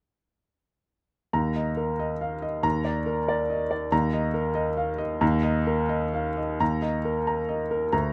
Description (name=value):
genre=classical, virtuoso piano study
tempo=82-96 BPM (dotted quarters)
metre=6/8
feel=rubato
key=unclear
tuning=A4 = 440 Hz
part: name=clear baby grand piano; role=solo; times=1.3-8.1 s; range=D2 to Bb5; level=-26 LUFS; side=equal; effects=none
room=light reverb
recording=close, detailed microphones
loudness=-26 LUFS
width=mono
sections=1.3-6.6 A section; 6.6-8.1 B section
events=none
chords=1.3 Eb5; 2.6 Bb/Eb; 3.9 Eb5